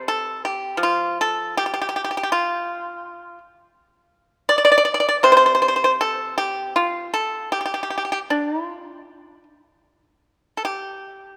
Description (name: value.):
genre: chinese traditional, Chinese solo plucked strings.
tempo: 80 BPM.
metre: 4/4.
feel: rubato.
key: C zhi mode.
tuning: A4 = 438 Hz.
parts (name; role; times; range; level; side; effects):
pipa; solo; 0.0-11.4 s; C3 to D5; -21 LUFS; equal; none.
room: light reverb.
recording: none.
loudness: -21 LUFS.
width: mono.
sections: 0.0-11.4 A section.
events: none.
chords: none.